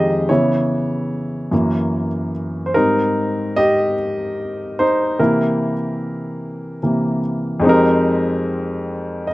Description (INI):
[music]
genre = R&B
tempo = 49 BPM (dotted quarters)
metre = 6/8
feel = straight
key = F minor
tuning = A4 = 439 Hz
[part]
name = warm grand piano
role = solo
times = 0.0-9.3 s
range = F2 to F5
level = -16 LUFS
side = equal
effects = slapback echo
[sound]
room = light reverb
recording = recorded outdoors, with no room sound, nothing above 10.8 kHz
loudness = -16 LUFS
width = side -18 dB against mid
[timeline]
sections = 0.0-7.6 A section; 7.6-9.3 B section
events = grand piano solo 0.0-7.6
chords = 0.3 Dbm7; 1.5 Gb7; 2.7 Abmaj9; 5.2 C7; 7.6 Fm11